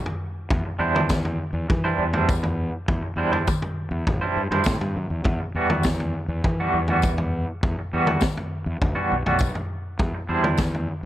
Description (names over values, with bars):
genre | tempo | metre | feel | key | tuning
psychedelic rock | 101 BPM | 4/4 | straight | unclear | A4 = 440 Hz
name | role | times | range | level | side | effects
clean electric guitar | riff | 0.1-10.6 s | E3 to C5 | -25 LUFS | right 2 dB | tremolo
vintage drum kit | drums | 0.1-10.9 s | kick drum, snare drum, toms | -25 LUFS | equal | none
fuzz fingered electric bass | bass | 0.5-11.1 s | A1 to E3 | -27 LUFS | equal | overdrive
tambourine | percussion | 1.1-10.7 s | none | -39 LUFS | left 17 dB | none
room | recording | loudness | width
light reverb, small room ambience | none | -21 LUFS | side -13 dB against mid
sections
0.0-11.1 A section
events
none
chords
0.5 Cadd9/E; 5.3 Emadd9; 10.0 Cadd9/E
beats
| 0.49 1.09 1.69 2.28 | 2.88 3.47 4.07 4.66 | 5.26 5.85 6.45 7.04 | 7.63 8.22 8.81 9.40 | 9.99 10.58